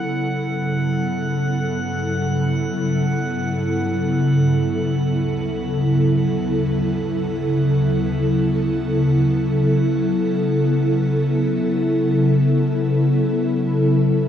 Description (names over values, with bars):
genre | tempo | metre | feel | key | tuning
ambient | free time | none | none | G lydian | A4 = 440 Hz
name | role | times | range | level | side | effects
ethereal airy pad | sustained chords | 0.0-14.3 s | D2 to A4 | -17 LUFS | equal | ensemble chorus, built-in reverb
drifting glass-harmonics texture | texture | 0.0-14.3 s | F#5 | -33 LUFS | right 1 dB | chorus, built-in reverb
room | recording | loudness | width
wet cathedral reverb, RT60 5.6 s | none | -17 LUFS | side -9 dB against mid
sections
0.0-14.3 A section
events
fade-out on synth texture 0.0-14.3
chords
0.1 Gmaj7; 4.9 D6; 9.7 F#m7